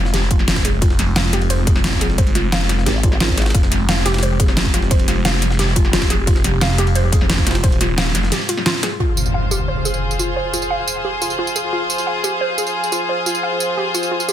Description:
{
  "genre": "dark technical drum and bass",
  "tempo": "176 BPM",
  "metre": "4/4",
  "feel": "straight",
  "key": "F minor",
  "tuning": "A4 = 440 Hz",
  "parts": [
    { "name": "dark analog pad", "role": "sustained chords", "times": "0.0-14.3 s", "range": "Ab3 to G5", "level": "-28 LUFS", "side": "equal", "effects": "chorus, sidechain pumping" },
    { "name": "phased detuned saw bass", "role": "bass", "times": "0.0-8.3 s", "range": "Eb1 to G1", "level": "-19 LUFS", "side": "equal", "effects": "phaser, overdrive, sidechain pumping" },
    { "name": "warbly dusty pluck", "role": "arpeggios", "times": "0.1-14.3 s", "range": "F4 to F5", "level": "-24 LUFS", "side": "right 1 dB", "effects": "chorus, sidechain pumping, ping-pong delay" },
    { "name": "dubstep drum kit", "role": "drums", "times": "0.1-14.3 s", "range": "hi-hat, snare drum, tambourine", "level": "-20 LUFS", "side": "equal", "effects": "overdrive" },
    { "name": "jungle sampler-style drum kit", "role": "drums", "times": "0.1-8.9 s", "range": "ride cymbal, snare drum", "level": "-28 LUFS", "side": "right 1 dB", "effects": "high-pass filter on snare, high-pass filter on cymbals" },
    { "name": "electronic kick drum", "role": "drums", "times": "0.3-7.7 s", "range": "none", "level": "-17 LUFS", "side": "equal", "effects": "overdrive" },
    { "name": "vowel-sweep wobble bass", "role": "bass", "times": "2.9-3.5 s", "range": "Ab1", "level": "-19 LUFS", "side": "equal", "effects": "chorus" },
    { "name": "impact", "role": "sound effects", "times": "9.0-10.4 s", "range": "none", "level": "-22 LUFS", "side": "equal", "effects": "none" },
    { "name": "rich studio string section", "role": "texture", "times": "9.0-14.3 s", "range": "F4 to C5", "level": "-20 LUFS", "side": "equal", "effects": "sidechain pumping" }
  ],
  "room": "light reverb",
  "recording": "dense, heavily limited modern master",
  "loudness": "-15 LUFS",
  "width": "side -11 dB against mid",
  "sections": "0.0-9.0 A section; 9.0-14.3 B section",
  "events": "break 8.3-9.0; impact 9.0-10.4; filter sweep on analog synth pad 9.0-14.3",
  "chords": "0.0 Fm",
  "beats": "0.14 0.48 | 0.82 1.16 1.50 1.84 | 2.18 2.52 2.86 3.21 | 3.55 3.89 4.23 4.57 | 4.91 5.25 5.59 5.93 | 6.27 6.61 6.96 7.30 | 7.64 7.98 8.32 8.66 | 9.00 9.34 9.68 10.02 | 10.36 10.71 11.05 11.39 | 11.73 12.07 12.41 12.75 | 13.09 13.43 13.77 14.11"
}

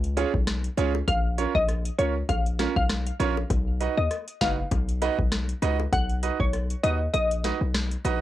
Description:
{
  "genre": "dancehall",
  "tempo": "99 BPM",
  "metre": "4/4",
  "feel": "swing 56% on 16ths",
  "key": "unclear",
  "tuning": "A4 = 443 Hz",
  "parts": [
    { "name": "hard-hitting 808-style bass", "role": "bass", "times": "0.0-8.2 s", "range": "F#1 to D#2", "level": "-27 LUFS", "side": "left 1 dB", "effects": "none" },
    { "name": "booming analog drum machine", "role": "drums", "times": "0.0-8.2 s", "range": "hi-hat, kick drum, rim click, snare drum", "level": "-28 LUFS", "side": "left 1 dB", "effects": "overdrive, cassette tape" },
    { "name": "clear concert grand piano", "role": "accompaniment", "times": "0.2-8.2 s", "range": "Db4 to F5", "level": "-27 LUFS", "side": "right 8 dB", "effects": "sidechain pumping, cassette tape" },
    { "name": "bongos", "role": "percussion", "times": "0.2-8.2 s", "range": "none", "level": "-36 LUFS", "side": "left 10 dB", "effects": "none" },
    { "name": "glassy wavetable pluck", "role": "melody", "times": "1.1-7.6 s", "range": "Db5 to F#5", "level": "-28 LUFS", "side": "left 2 dB", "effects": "chorus, cassette tape" }
  ],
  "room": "light reverb",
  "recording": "home recording on cassette",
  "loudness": "-23 LUFS",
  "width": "side -14 dB against mid",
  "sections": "0.0-8.2 A section",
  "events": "kick muted 7.1-8.2",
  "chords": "0.0 Db; 1.1 Bbm; 3.5 B",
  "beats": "0.47 | 1.08 1.68 2.29 2.90 | 3.50 4.11 4.71 5.32 | 5.93 6.53 7.14 7.74"
}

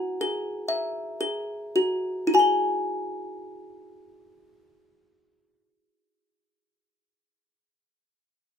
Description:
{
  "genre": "children's music",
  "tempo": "50-65 BPM",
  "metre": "3/4",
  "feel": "straight",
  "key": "E major",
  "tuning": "A4 = 440 Hz",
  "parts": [
    { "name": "music box", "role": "solo", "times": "0.0-6.7 s", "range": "E4 to G#5", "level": "-24 LUFS", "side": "left 1 dB", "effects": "none" }
  ],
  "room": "light reverb",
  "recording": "none",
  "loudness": "-23 LUFS",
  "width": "side -8 dB against mid",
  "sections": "0.0-2.3 A section; 2.3-5.9 B section",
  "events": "slowing down 0.0-2.3",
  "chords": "0.0 Eadd9",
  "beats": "0.21 1.21 | 2.33 3.52 4.69"
}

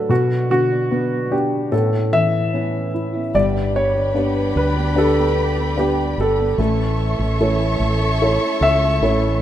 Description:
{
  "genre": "pop ballad",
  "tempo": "74 BPM",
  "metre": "4/4",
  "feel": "straight",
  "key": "unclear",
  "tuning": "A4 = 439 Hz",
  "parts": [
    { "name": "warm concert grand piano", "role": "melody", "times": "0.0-9.4 s", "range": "F#4 to E5", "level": "-20 LUFS", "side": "equal", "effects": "none" },
    { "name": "dark grand piano", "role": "accompaniment", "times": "0.0-9.4 s", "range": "A2 to C#5", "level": "-21 LUFS", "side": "left 1 dB", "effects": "none" },
    { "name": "nylon-string guitar", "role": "arpeggios", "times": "0.0-9.4 s", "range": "G2 to A4", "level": "-28 LUFS", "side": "right 5 dB", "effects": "none" },
    { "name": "warm studio string section", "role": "sustained chords", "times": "3.3-9.4 s", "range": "D4 to C#6", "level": "-25 LUFS", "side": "equal", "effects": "none" },
    { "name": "mellow fretless electric bass", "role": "bass", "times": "3.3-9.4 s", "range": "G1 to D2", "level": "-21 LUFS", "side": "equal", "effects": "none" }
  ],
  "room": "moderate lush hall reverb, RT60 2.8 s",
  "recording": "rough home demo mix",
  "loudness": "-16 LUFS",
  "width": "side -11 dB against mid",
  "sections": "0.0-3.3 A section; 3.3-9.4 B section",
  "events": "none",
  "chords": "0.1 Bm; 1.7 Aadd9; 3.3 G; 6.6 A",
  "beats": "| 0.10 0.91 1.72 2.53 | 3.35 4.16 4.97 5.78 | 6.59 7.40 8.21 9.02"
}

